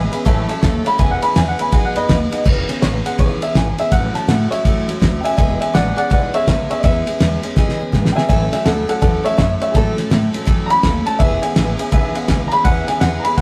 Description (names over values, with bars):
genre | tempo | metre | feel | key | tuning
rockabilly | 165 BPM | 4/4 | swing 64% on 8ths | E major | A4 = 436 Hz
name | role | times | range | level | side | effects
dark upright piano | melody | 0.0-13.4 s | G#4 to B5 | -21 LUFS | equal | none
honky-tonk upright piano | accompaniment | 0.0-2.4, 11.2-13.4 s | B4 to B5 | -29 LUFS | equal | none
picked steel-string acoustic guitar | accompaniment | 0.0-13.4 s | A2 to A4 | -25 LUFS | equal | none
upright bass | bass | 0.0-13.4 s | E1 to A2 | -25 LUFS | equal | none
cloth-damped thuddy drum kit | drums | 0.1-13.4 s | crash cymbal, kick drum, ride cymbal, snare drum | -20 LUFS | equal | none
room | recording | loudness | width
moderate stone room reverb, RT60 1.1 s | rough rehearsal-room recording | -16 LUFS | mono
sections
0.0-2.5 A section; 2.5-13.4 A section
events
drum fill 7.6-8.3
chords
0.3 A6; 1.0 E6; 1.7 B6; 2.5 E6; 3.9 A6; 5.4 E6; 8.3 A6; 11.2 E6